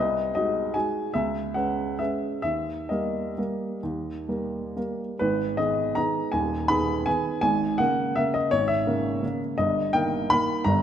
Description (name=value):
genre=classical, piano waltz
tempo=125-178 BPM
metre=3/4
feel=rubato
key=G# minor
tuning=A4 = 443 Hz
part: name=warm upright piano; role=solo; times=0.0-10.8 s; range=D#1 to B5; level=-23 LUFS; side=equal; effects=none
room=moderate concert hall reverb, RT60 2.0 s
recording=none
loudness=-23 LUFS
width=side -9 dB against mid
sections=0.0-5.2 A section; 5.2-10.8 B section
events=none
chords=0.0 G#7/B#; 1.1 C#m7; 2.4 D#; 5.2 G#m; 7.4 A#m7b5/G#; 9.6 D#/G